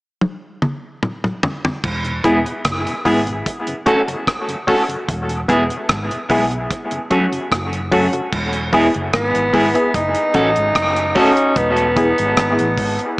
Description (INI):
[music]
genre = dub reggae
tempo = 74 BPM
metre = 4/4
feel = straight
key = E major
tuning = A4 = 438 Hz
[part]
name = deep reggae drum kit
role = drums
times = 0.2-13.2 s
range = crash cymbal, hi-hat, kick drum, rim click, toms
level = -22 LUFS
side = equal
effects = dub echo
[part]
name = vintage muted fingered electric bass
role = bass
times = 1.8-13.0 s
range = E1 to B1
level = -25 LUFS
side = equal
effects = none
[part]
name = mellow tonewheel organ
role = accompaniment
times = 2.0-8.2 s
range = E2 to F#4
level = -28 LUFS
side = equal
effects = none
[part]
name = clean electric guitar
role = accompaniment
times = 2.2-11.3 s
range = F#3 to A4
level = -21 LUFS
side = equal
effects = phaser, dub echo
[part]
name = filtered dub chord stab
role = stabs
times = 2.2-12.1 s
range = B3 to A4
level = -20 LUFS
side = left 1 dB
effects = chorus, dub echo
[part]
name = breathy tenor saxophone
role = melody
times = 9.1-13.2 s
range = B3 to D#4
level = -16 LUFS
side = equal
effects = dub echo
[sound]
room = wet echo chamber reverb, RT60 2.2 s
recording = echo-heavy mix, small speaker sound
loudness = -15 LUFS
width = side -23 dB against mid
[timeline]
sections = 0.0-1.8 A section; 1.8-8.3 B section; 8.3-13.2 C section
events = drum fill 0.2-1.8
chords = 0.0 N.C.; 1.8 E; 3.5 F#m; 5.1 E; 6.7 F#m; 8.3 E; 9.9 F#m; 11.6 E